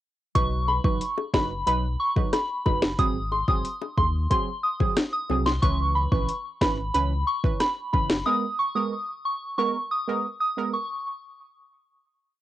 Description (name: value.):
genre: dancehall.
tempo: 91 BPM.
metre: 4/4.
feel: straight.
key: G# minor.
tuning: A4 = 441 Hz.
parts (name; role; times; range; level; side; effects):
soft synth bell; melody; 0.3-10.8 s; B5 to D#6; -26 LUFS; equal; chorus, phaser, cassette tape, tape echo.
synth brass stab; accompaniment; 0.3-10.8 s; E3 to B4; -30 LUFS; right 7 dB; chorus.
sub bass with octave; bass; 0.3-8.2 s; F#1 to D#2; -28 LUFS; left 1 dB; none.
afro-pop drum kit; drums; 0.3-8.3 s; hi-hat, kick drum, rim click, snare drum; -24 LUFS; left 1 dB; vintage 12-bit sampler grit.
bongos; percussion; 0.7-5.5 s; none; -33 LUFS; left 10 dB; none.
room: little or no reverb.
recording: home recording on cassette.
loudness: -23 LUFS.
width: side -14 dB against mid.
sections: 0.4-10.9 chorus.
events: none.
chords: 0.4 B; 3.0 G#7; 5.6 C#m7; 8.3 G#madd9.